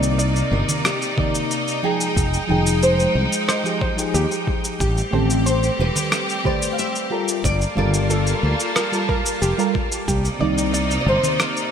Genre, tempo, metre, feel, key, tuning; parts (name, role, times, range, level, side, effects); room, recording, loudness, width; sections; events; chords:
sunset chillout; 91 BPM; 4/4; straight; A4 = 440 Hz
mellow FM electric piano; accompaniment; 0.0-11.7 s; C3 to G5; -24 LUFS; moving between left 5 dB and right 3 dB; chorus, phaser, auto-pan, digital delay
bright symphonic string section; sustained chords; 0.0-11.7 s; C3 to A5; -25 LUFS; right 1 dB
soft round pluck; arpeggios; 0.0-11.1 s; G4 to D5; -29 LUFS; right 2 dB; chorus, digital delay
fretless electric bass; bass; 0.0-11.2 s; E1 to Eb2; -20 LUFS; equal
electronic shaker, congas and rim click; drums; 0.0-11.7 s; -25 LUFS; right 1 dB; overdrive, studio reverb
nylon-string guitar; melody; 0.5-11.7 s; G4 to F5; -25 LUFS; left 1 dB; ensemble chorus, digital delay
electronic kick drum; drums; 1.2-10.2 s; -24 LUFS; equal; overdrive, studio reverb
moderate lush hall reverb, RT60 1.8 s, digital ambience; bright 1980s-style digital production; -18 LUFS; side -8 dB against mid
0.0-11.7 A section
0.0 Cm9; 1.8 Fm9; 4.8 Am9; 7.4 Gm9; 10.1 Cm9